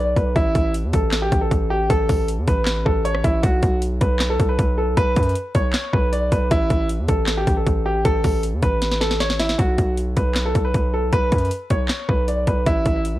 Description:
hip hop, trap; 156 BPM; 4/4; half-time; B minor; A4 = 440 Hz
clear grand piano; melody; 0.0-13.0 s; E4 to D5; -22 LUFS; equal; low-pass filter
distorted 808-style bass; bass; 0.0-13.2 s; A1 to F#2; -22 LUFS; equal; distortion
trap drum kit; drums; 0.2-13.1 s; handclaps, hi-hat, kick drum, rim click, snare drum; -21 LUFS; equal; overdrive
digital ambience; worn, warbling old tape, cassette tape, warbly pitch drift; -17 LUFS; side -15 dB against mid
0.0-9.6 A section; 9.6-13.2 B section
drum fill 8.8-9.6
0.4 A5; 3.4 B5; 6.5 A5; 9.6 B5; 12.7 A5
| 0.36 0.74 1.13 1.51 | 1.90 2.28 2.67 3.05 | 3.43 3.82 4.20 4.59 | 4.97 5.36 5.74 6.13 | 6.51 6.90 7.28 7.67 | 8.05 8.43 8.82 9.20 | 9.59 9.97 10.36 10.74 | 11.13 11.51 11.90 12.28 | 12.66 13.05

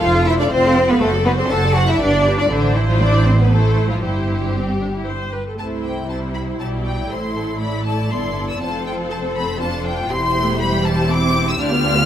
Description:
quick classical-period movement for string orchestra; 120 BPM; 3/4; straight; C major; A4 = 437 Hz
bright symphonic violin section; melody; 0.0-12.1 s; D4 to F6; -24 LUFS; left 2 dB
rich studio violin section; second line; 0.0-12.1 s; D4 to A5; -25 LUFS; left 3 dB
clear symphonic viola section; accompaniment; 0.0-12.1 s; G3 to F5; -24 LUFS; equal
rich symphonic cello section; bass; 0.0-12.1 s; D2 to A4; -21 LUFS; right 1 dB
rich symphonic double bass section; bass; 0.0-12.1 s; E1 to D2; -20 LUFS; right 2 dB
moderate scoring stage reverb, RT60 1.5 s; -16 LUFS; side -10 dB against mid
0.0-5.6 A section; 5.6-12.1 B section
0.0 F; 1.0 D7/F#; 2.0 G7; 2.5 Am; 4.0 C/G; 5.1 G; 5.6 C; 7.1 Am; 8.6 F; 10.1 C/E
0.02 0.52 | 1.01 1.51 2.00 | 2.50 3.00 3.51 | 4.03 4.55 5.07 | 5.58 6.09 6.60 | 7.11 7.61 8.11 | 8.61 9.10 9.61 | 10.11 10.61 11.10 | 11.60

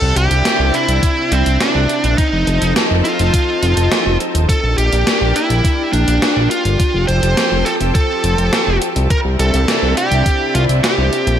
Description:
synthwave; 104 BPM; 4/4; straight; F major; A4 = 442 Hz
bluesy overdriven lead guitar; melody; 0.0-11.4 s; C4 to C5; -17 LUFS; equal; distortion, digital delay
lush unison pad; sustained chords; 0.0-11.4 s; C3 to A4; -21 LUFS; equal; chorus, sidechain pumping
fat analog bass; bass; 0.0-11.4 s; Eb1 to C2; -15 LUFS; equal
gated 80s digital drum machine; drums; 0.2-11.4 s; hi-hat, snare drum; -19 LUFS; equal; gated reverb, gated reverb snare
electronic kick drum; drums; 1.0-10.4 s; -16 LUFS; equal
light reverb; -12 LUFS; side -9 dB against mid
0.0-11.4 A section
0.0 Cadd9; 2.2 F7; 4.5 Bb6; 6.8 Fadd9; 9.1 Cadd9
0.45 1.03 1.61 | 2.18 2.76 3.34 3.91 | 4.49 5.07 5.64 6.22 | 6.80 7.38 7.95 8.53 | 9.11 9.68 10.26 10.84

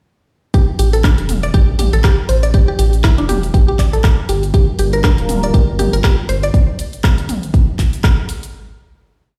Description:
afro house; 120 BPM; 4/4; swing 57% on 16ths; G dorian; A4 = 441 Hz
mallet-like synth pluck; arpeggios; 0.5-6.5 s; D4 to D5; -23 LUFS; equal; chorus, phaser, cassette tape, sidechain pumping, tape echo
deep house drum kit; drums; 0.5-8.5 s; cabasa, handclaps, hi-hat, rim click, toms; -25 LUFS; equal
electronic kick drum; drums; 0.5-8.2 s; -15 LUFS; equal
round analog bass; bass; 0.8-6.5 s; D1 to A1; -18 LUFS; equal; sidechain pumping
dark analog pad; sustained chords; 4.5-6.5 s; G3 to Bb4; -25 LUFS; equal; chorus, sidechain pumping
little or no reverb; played on a big sound system in a bare room, large studio reverb; -14 LUFS; mono
0.5-8.5 drop
drop 0.5-8.5
0.5 A7(no3); 4.5 Gm7
| 0.54 1.04 1.54 2.04 | 2.54 3.04 3.54 4.04 | 4.54 5.04 5.54 6.04 | 6.54 7.04 7.54 8.04

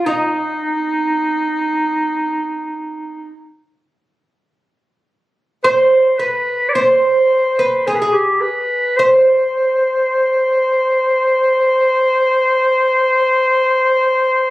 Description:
Arabic maqam ensemble; free time; C maqam nahawand; A4 = 440 Hz
mellow clarinet; melody; 0.0-14.5 s; Eb4 to D5; -14 LUFS; equal
oud; second line; 0.0-14.5 s; Eb4 to C5; -15 LUFS; right 2 dB
moderate studio reverb, RT60 0.7 s; recorded on a phone in the room, club reverb; -13 LUFS; side -17 dB against mid
0.0-14.5 A section
free time

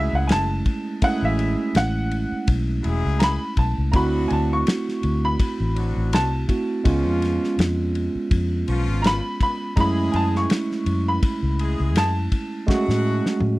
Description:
straight-eighth soul blues; 82 BPM; 4/4; swing 55% on 16ths; F# minor; A4 = 439 Hz
warm upright piano; second line; 0.0-13.4 s; E5 to C#6; -26 LUFS; equal
barky tine electric piano; accompaniment; 0.0-13.6 s; G#3 to F#4; -25 LUFS; right 3 dB
brilliant horn section; sustained chords; 0.0-13.4 s; E#3 to G#4; -32 LUFS; left 4 dB
vintage muted fingered electric bass; bass; 0.0-13.6 s; E1 to A2; -23 LUFS; left 1 dB
warm soul drum kit; drums; 0.3-13.6 s; kick drum, ride cymbal, snare drum, toms; -23 LUFS; left 1 dB
little or no reverb; dry, close 1970s-style studio recording; -19 LUFS; side -19 dB against mid
0.0-13.6 A section
upright piano solo 0.0-13.6; drum fill 12.7-13.6
0.0 F#m9; 3.9 D7; 6.9 C#7; 9.8 F#m9
0.29 | 1.02 1.75 2.48 3.21 | 3.94 4.67 5.39 6.12 | 6.85 7.58 8.31 9.04 | 9.76 10.49 11.22 11.95 | 12.68 13.41

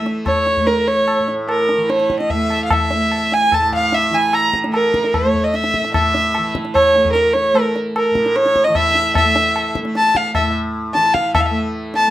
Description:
indian classical, Hindustani; 149 BPM; 4/4; straight; A major; A4 = 438 Hz
rich violin; melody; 0.0-12.1 s; Bb4 to Bb5; -15 LUFS; equal; plate reverb
tanpura; drone; 0.0-12.1 s; A2 to A3; -23 LUFS; right 1 dB
tabla; percussion; 0.1-12.1 s; -21 LUFS; left 2 dB
wet studio reverb, RT60 0.5 s; -14 LUFS; side -14 dB against mid
0.0-12.1 A section
0.27 0.68 | 1.08 1.49 1.90 2.30 | 2.71 3.12 3.52 3.93 | 4.33 4.74 5.14 5.54 | 5.95 6.35 6.75 7.16 | 7.56 7.96 8.36 8.76 | 9.16 9.56 9.96 10.36 | 10.76 11.15 11.55 11.95

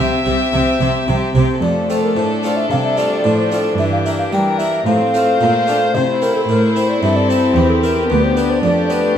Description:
classical, baroque-style concerto movement with solo episodes; 111 BPM; 4/4; straight; F major; A4 = 438 Hz
mellow baroque flute; melody; 0.0-9.2 s; A4 to G5; -19 LUFS; left 2 dB
rich chamber violin section; melody; 0.0-9.2 s; G4 to C5; -24 LUFS; left 5 dB
rich chamber violin section; second line; 0.0-9.2 s; C4 to E5; -23 LUFS; equal
dark chamber viola section; accompaniment; 0.0-9.2 s; E3 to C4; -22 LUFS; left 2 dB
harpsichord; accompaniment; 0.0-9.1 s; D2 to G4; -22 LUFS; equal
rich chamber double bass section; bass; 0.0-1.4 s; C2; -23 LUFS; right 3 dB
warm chamber cello section; bass; 0.0-9.1 s; D2 to G3; -20 LUFS; right 2 dB
wet recital hall reverb, RT60 1.7 s; -13 LUFS; side -9 dB against mid
0.0-1.6 A section; 1.6-9.2 A section
0.0 C; 1.6 F; 3.8 Edim/G; 4.9 F/A; 5.9 C; 8.1 Bdim/D
0.53 1.08 | 1.62 2.17 2.71 3.25 | 3.79 4.33 4.87 5.41 | 5.94 6.48 7.02 7.56 | 8.10 8.63 9.17

